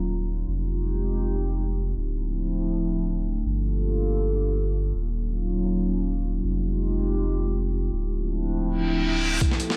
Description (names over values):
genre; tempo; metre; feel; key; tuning
drum and bass, jungle; free time; none; none; unclear; A4 = 440 Hz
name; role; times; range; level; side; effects
warbly tape-like pad; sustained chords; 0.0-9.8 s; F3 to A4; -30 LUFS; equal; chorus, built-in reverb
soft dub sub bass; bass; 0.0-9.4 s; D1 to G1; -28 LUFS; equal; none
reverse cymbal and riser; sound effects; 8.8-9.8 s; none; -30 LUFS; equal; none
breakbeat sampler-style drum kit; drums; 9.4-9.8 s; hi-hat, kick drum, snare drum; -25 LUFS; equal; studio reverb
room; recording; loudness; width
light reverb; none; -26 LUFS; mono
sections
0.0-9.4 A section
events
reverse cymbal 8.8-9.4; riser 9.4-9.8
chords
0.5 Fm9; 2.0 Dm9; 3.5 Gm9; 4.9 Ebm9; 6.4 Fm9; 7.9 Dm9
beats
free time